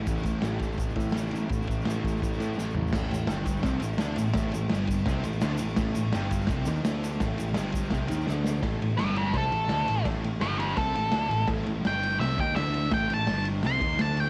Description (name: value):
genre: garage rock duo or trio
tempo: 168 BPM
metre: 4/4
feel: straight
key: unclear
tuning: A4 = 439 Hz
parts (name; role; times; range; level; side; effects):
- fuzz guitar; riff; 0.0-14.3 s; G2 to D#4; -34 LUFS; equal; distortion, cassette tape
- overdriven picked electric bass; bass; 0.0-14.3 s; G1 to A2; -33 LUFS; equal; none
- raw garage drum kit; drums; 0.1-14.3 s; crash cymbal, kick drum, ride cymbal, snare drum, toms; -32 LUFS; equal; cassette tape
- tube shaker; percussion; 0.1-8.6 s; none; -52 LUFS; equal; none
- octave-fuzz lead guitar; melody; 9.0-14.3 s; A4 to C6; -31 LUFS; equal; distortion, cassette tape
room: light reverb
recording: home recording on cassette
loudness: -28 LUFS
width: mono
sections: 0.0-2.9 A section; 2.9-8.6 B section; 8.6-14.3 C section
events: drum fill 2.6-2.9, 8.3-8.6; lead electric guitar solo 8.6-14.3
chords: 0.0 A5; 2.9 Gsus24